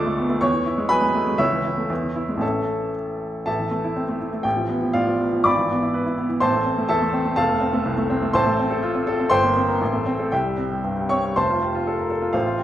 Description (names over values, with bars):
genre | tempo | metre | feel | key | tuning
classical, virtuoso piano study | 112-126 BPM | 2/4 | rubato | A major, A minor from 3.5 s, F major from 7.4 s | A4 = 440 Hz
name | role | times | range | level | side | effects
clear baby grand piano | solo | 0.0-12.6 s | F1 to D6 | -19 LUFS | equal | none
room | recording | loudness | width
wet recital hall reverb, RT60 1.6 s | heard from further back in the room | -19 LUFS | side -12 dB against mid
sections
0.0-3.5 A section; 3.5-11.4 B section; 11.4-12.6 C section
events
none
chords
0.4 E; 1.4 A/C#; 1.9 E; 2.4 A; 3.5 Am; 4.4 Bm7b5/A; 5.5 E7/G#; 6.4 Am; 7.4 F; 8.3 F/A; 9.3 C5/G; 9.8 Am7; 10.3 C; 11.4 F